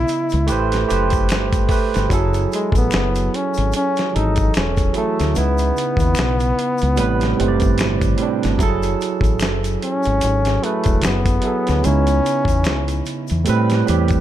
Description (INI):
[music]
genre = R&B, neo-soul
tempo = 74 BPM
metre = 4/4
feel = swing 58% on 16ths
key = F# dorian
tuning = A4 = 440 Hz
[part]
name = dark flugelhorn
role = melody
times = 0.0-13.5 s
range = G#3 to E4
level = -21 LUFS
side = left 2 dB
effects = slapback echo
[part]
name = barky tine electric piano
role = accompaniment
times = 0.0-14.2 s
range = A2 to B5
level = -21 LUFS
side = right 6 dB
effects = overdrive, analog chorus
[part]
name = deep dub fingered electric bass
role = bass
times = 0.0-14.2 s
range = E1 to A2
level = -20 LUFS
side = left 1 dB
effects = none
[part]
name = dusty soul sampler-style drum kit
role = drums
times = 0.1-14.2 s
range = hi-hat, kick drum, snare drum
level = -22 LUFS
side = left 1 dB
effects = none
[part]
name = tube shaker and finger snaps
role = percussion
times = 0.1-14.2 s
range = none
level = -34 LUFS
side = left 6 dB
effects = none
[sound]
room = light reverb, small room ambience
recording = dark, warm production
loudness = -16 LUFS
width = side -12 dB against mid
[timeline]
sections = 0.0-14.2 A section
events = tine electric piano fill 13.5-14.2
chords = 0.5 Am9; 2.1 F#m9; 5.3 C#m9; 7.0 Am9; 8.6 F#m9; 11.8 C#m9; 13.5 Am9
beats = 0.48 1.30 | 2.11 2.92 3.73 4.54 | 5.35 6.16 6.97 7.78 | 8.59 9.40 10.21 11.03 | 11.84 12.65 13.46